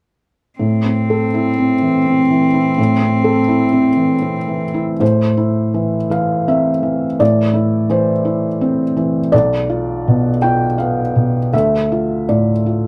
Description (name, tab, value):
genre	neoclassical piano and strings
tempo	82 BPM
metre	3/4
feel	uneven beats, rubato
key	A minor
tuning	A4 = 440 Hz
part	rich cello	second line	0.6-4.8 s	C4	-20 LUFS	equal	none
part	felt-muted upright piano	accompaniment	0.6-12.9 s	B1 to G5	-16 LUFS	equal	none
room	moderate booth ambience, RT60 0.2 s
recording	none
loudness	-16 LUFS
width	mono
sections	0.6-5.0 A section; 5.0-12.9 B section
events	none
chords	0.6 Am; 9.3 Bdim; 11.5 Dm